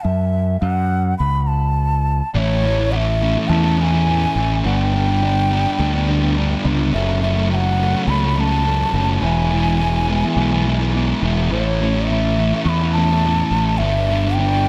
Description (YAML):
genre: post-rock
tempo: 105 BPM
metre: 4/4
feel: straight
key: A major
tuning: A4 = 440 Hz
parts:
  - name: bansuri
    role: melody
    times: 0.0-14.7 s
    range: C#5 to C#6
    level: -25 LUFS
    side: equal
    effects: digital delay
  - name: growling fingered electric bass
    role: bass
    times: 0.0-14.7 s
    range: E1 to F#2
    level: -21 LUFS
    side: equal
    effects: overdrive
  - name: fuzz guitar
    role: riff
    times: 2.3-14.7 s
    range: F#2 to E4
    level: -22 LUFS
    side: equal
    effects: distortion
room: light reverb, studio reverb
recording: none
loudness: -18 LUFS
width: mono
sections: 0.0-2.3 A section; 2.3-14.7 B section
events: build-up 0.0-2.3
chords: 0.1 F#m7; 2.3 A; 4.6 G; 6.9 F#m; 9.2 E; 11.5 A; 13.8 G6